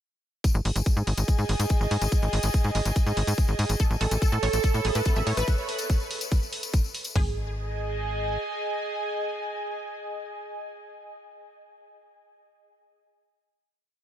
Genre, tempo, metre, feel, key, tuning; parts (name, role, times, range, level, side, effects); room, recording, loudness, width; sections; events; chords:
psychedelic trance; 143 BPM; 4/4; straight; G# phrygian; A4 = 439 Hz
drum and bass drum kit; drums; 0.4-7.3 s; hi-hat, kick drum, toms; -23 LUFS; equal; studio reverb
electronic hi-hat; drums; 0.4-7.1 s; -36 LUFS; right 1 dB; studio reverb
tambourine; percussion; 0.4-7.1 s; -36 LUFS; left 5 dB
airy breathy pad; texture; 0.7-10.7 s; G#4 to B5; -33 LUFS; right 1 dB; chorus, sidechain pumping
tight sequencer bass; bass; 0.5-8.4 s; G#1 to A2; -26 LUFS; equal
evolving wavetable pad; sustained chords; 4.1-5.5 s; A4; -33 LUFS; right 7 dB; chorus, built-in reverb, sidechain pumping
wide unison pluck; riff; 3.8-7.3 s; G#4 to E5; -34 LUFS; right 1 dB; auto-pan, sidechain pumping, tape echo
vowel-sweep wobble bass; second line; 5.1-5.2 s; B3; -45 LUFS; right 5 dB
light reverb, digital ambience; -24 LUFS; side -11 dB against mid
0.4-7.2 groove; 7.2-10.5 final chord
0.4 G#5; 3.8 A5; 7.2 G#5